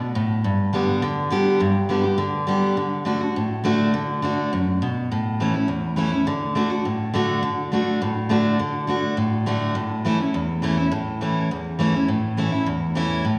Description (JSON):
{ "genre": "bluegrass", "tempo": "206 BPM", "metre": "4/4", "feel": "straight", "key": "D major", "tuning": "A4 = 437 Hz", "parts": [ { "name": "picked steel-string acoustic guitar", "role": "solo", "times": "0.0-13.4 s", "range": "E2 to G4", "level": "-22 LUFS", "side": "equal", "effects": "none" } ], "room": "wet concert hall reverb, RT60 1.8 s", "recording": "recorded in a church or concert hall, small room ambience", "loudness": "-22 LUFS", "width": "mono", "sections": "0.0-13.4 A section", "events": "none", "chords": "0.4 G; 2.8 D; 5.1 A; 6.3 D; 9.8 A" }